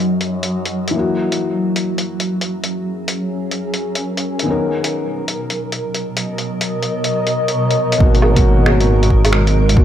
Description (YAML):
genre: future garage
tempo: 136 BPM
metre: 4/4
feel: swing 65% on 16ths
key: G# minor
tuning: A4 = 440 Hz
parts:
  - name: felt-muted upright piano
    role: accompaniment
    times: 0.0-9.8 s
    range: F#2 to A#4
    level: -22 LUFS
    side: left 2 dB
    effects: sidechain pumping, tape echo
  - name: granular cloud pad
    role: sustained chords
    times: 0.0-9.8 s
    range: B2 to F#5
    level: -19 LUFS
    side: equal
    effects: built-in reverb, vintage 12-bit sampler grit, sidechain pumping
  - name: lo-fi sampler-style drum kit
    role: drums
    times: 0.2-9.8 s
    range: finger snaps, hi-hat, woodblock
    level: -21 LUFS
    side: left 1 dB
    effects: none
  - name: dark detuned saw bass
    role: bass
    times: 8.0-9.8 s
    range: G#1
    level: -14 LUFS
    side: equal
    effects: tube saturation, sidechain pumping
  - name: electronic kick drum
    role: drums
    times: 8.0-9.8 s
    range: none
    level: -14 LUFS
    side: equal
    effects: overdrive
room: moderate recital hall reverb, RT60 1.2 s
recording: none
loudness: -15 LUFS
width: side -10 dB against mid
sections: 0.0-8.0 A section; 8.0-9.8 B section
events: filter sweep on ambient pad 0.0-8.0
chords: 0.0 D#m7/F#; 0.9 F#7; 4.5 Bmaj9; 8.0 G#m9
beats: 0.07 0.51 | 0.95 1.39 1.83 2.27 | 2.71 3.15 3.59 4.04 | 4.48 4.92 5.36 5.80 | 6.24 6.68 7.12 7.57 | 8.01 8.45 8.89 9.33 | 9.77